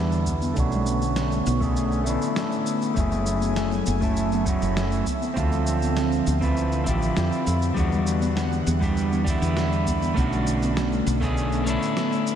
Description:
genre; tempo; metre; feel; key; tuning
sunset chillout; 100 BPM; 4/4; straight; E dorian; A4 = 441 Hz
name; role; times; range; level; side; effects
electric guitar at the edge of break-up; accompaniment; 0.0-12.4 s; G3 to B4; -26 LUFS; moving between left 5 dB and right 4 dB; auto-pan, low-pass filter, diffuse ambient delay
airy breathy pad; sustained chords; 0.0-12.4 s; D3 to G#5; -27 LUFS; right 2 dB; chorus
woody fretless electric bass; bass; 0.0-11.8 s; F#1 to F2; -25 LUFS; equal; tube saturation, analog chorus
electronic shaker and snare drum; drums; 0.1-12.4 s; none; -34 LUFS; equal; none
electronic kick drum; drums; 0.3-11.3 s; none; -28 LUFS; equal; none
congas; percussion; 0.3-11.2 s; none; -35 LUFS; left 3 dB; none
room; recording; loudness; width
moderate huge ambient reverb, RT60 8.1 s; dreamy mix soaked in reverb; -21 LUFS; side -9 dB against mid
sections
0.0-12.4 A section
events
filter sweep on clean electric guitar 0.0-12.4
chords
0.0 Em9; 0.6 Bm9; 3.0 F#m9; 5.1 Dm9; 7.8 Em9; 10.2 Bm9

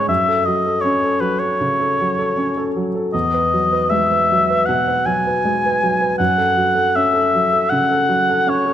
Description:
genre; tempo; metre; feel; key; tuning
classical, impressionist duo for oboe and grand piano; 79 BPM; 4/4; rubato; unclear; A4 = 440 Hz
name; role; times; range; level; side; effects
warm oboe; melody; 0.0-8.7 s; B4 to G#5; -16 LUFS; left 1 dB; none
warm baby grand piano; accompaniment; 0.0-8.7 s; E2 to B4; -20 LUFS; equal; none
room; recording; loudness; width
moderate scoring stage reverb, RT60 1.5 s; none; -15 LUFS; side -10 dB against mid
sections
0.0-8.7 A section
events
none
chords
0.1 F#m; 3.1 Emaj9; 6.2 F#m7

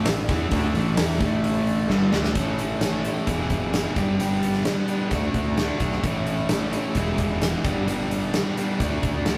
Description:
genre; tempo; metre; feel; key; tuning
classic rock; 130 BPM; 4/4; straight; A major; A4 = 438 Hz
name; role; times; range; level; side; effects
tonewheel organ; sustained chords; 0.0-2.3 s; C#4 to E5; -40 LUFS; equal; none
crunchy overdriven guitar; riff; 0.0-9.4 s; E2 to A4; -27 LUFS; equal; spring reverb
tight distorted guitar; riff; 0.0-9.4 s; E2 to G4; -34 LUFS; equal; distortion
fuzz fingered electric bass; bass; 0.0-9.4 s; E1 to E2; -32 LUFS; equal; overdrive
huge arena drum kit; drums; 0.1-9.4 s; hi-hat, kick drum, snare drum; -28 LUFS; equal; none
room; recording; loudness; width
moderate small room reverb, RT60 0.5 s; rough rehearsal-room recording; -24 LUFS; mono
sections
0.0-2.4 A section; 2.4-9.4 B section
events
drum fill 1.9-2.4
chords
0.0 A; 3.3 E; 4.0 G; 5.1 D; 6.0 A; 7.0 E; 7.7 G; 8.8 D

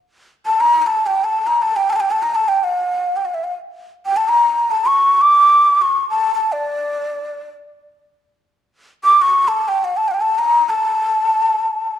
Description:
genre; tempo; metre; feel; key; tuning
Arabic maqam ensemble; free time; none; none; unclear; A4 = 438 Hz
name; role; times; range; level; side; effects
breathy hollow ney; solo; 0.5-12.0 s; D5 to D6; -14 LUFS; equal; none
room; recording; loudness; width
moderate recital hall reverb, RT60 1.4 s; dark, warm production; -14 LUFS; side -10 dB against mid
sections
0.0-8.5 A section; 8.5-12.0 A section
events
none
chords
none

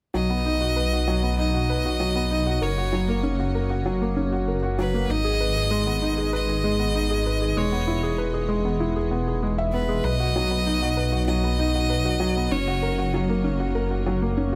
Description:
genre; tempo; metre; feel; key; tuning
piano and strings electronica; 97 BPM; 4/4; straight; unclear; A4 = 440 Hz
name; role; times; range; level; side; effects
bright violin; melody; 0.1-13.1 s; B4 to D#5; -31 LUFS; equal; digital delay
felt-muted upright piano; riff; 0.1-14.6 s; F#3 to E5; -27 LUFS; equal; digital delay
dark detuned saw bass; bass; 0.1-14.6 s; E1 to B1; -28 LUFS; equal; none
room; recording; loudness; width
light reverb, small room ambience; none; -24 LUFS; mono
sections
0.1-14.6 A section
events
none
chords
0.1 B; 2.6 F#; 5.1 G#m; 7.6 E; 10.0 B; 12.5 F#

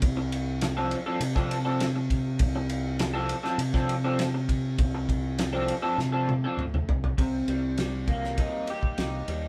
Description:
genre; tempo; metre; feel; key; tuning
psychedelic rock; 101 BPM; 4/4; straight; unclear; A4 = 440 Hz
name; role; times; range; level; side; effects
growling fingered electric bass; bass; 0.0-9.5 s; C2 to C3; -32 LUFS; equal; overdrive
cloth-damped thuddy drum kit; drums; 0.0-9.4 s; kick drum, ride cymbal, snare drum, toms; -32 LUFS; equal; none
electric guitar through a small old amp; riff; 0.2-9.5 s; C3 to A4; -32 LUFS; equal; rotary speaker
room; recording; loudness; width
moderate small room reverb, RT60 0.5 s; band playing live in one room; -28 LUFS; mono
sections
0.0-7.2 A section; 7.2-9.5 B section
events
drum fill 6.0-7.2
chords
0.0 F6/C; 7.2 Cm7

